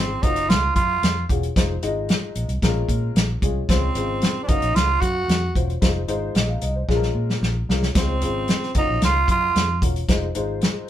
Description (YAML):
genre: uptempo 1960s-style soul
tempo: 113 BPM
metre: 4/4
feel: straight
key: unclear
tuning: A4 = 437 Hz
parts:
  - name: growling tenor saxophone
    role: melody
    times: 0.0-9.8 s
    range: C4 to Gb4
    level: -22 LUFS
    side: right 3 dB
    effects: none
  - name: warm upright piano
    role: accompaniment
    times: 0.0-10.9 s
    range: Db3 to F5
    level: -28 LUFS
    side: left 4 dB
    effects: none
  - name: vintage muted fingered electric bass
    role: bass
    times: 0.0-10.7 s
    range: Fb1 to Bb2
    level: -25 LUFS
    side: equal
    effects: none
  - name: warm soul drum kit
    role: drums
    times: 0.2-10.7 s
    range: hi-hat, kick drum, snare drum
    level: -21 LUFS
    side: equal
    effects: none
room: moderate small room reverb, RT60 0.5 s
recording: band playing live in one room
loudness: -19 LUFS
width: side -11 dB against mid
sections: 0.0-10.9 A section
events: drum fill 6.9-8.0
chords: 0.2 Gbmaj7; 1.6 Fm7; 2.6 Bbm7; 3.7 Dbmaj7; 4.5 Gbmaj7; 5.8 Fm7; 6.9 Bbm7; 8.0 Dbmaj7; 8.8 Gbmaj7; 10.1 Fm7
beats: 0.49 1.03 | 1.56 2.09 2.62 3.16 | 3.69 4.22 4.75 5.29 | 5.82 6.35 6.89 7.42 | 7.95 8.49 9.02 9.55 | 10.09 10.62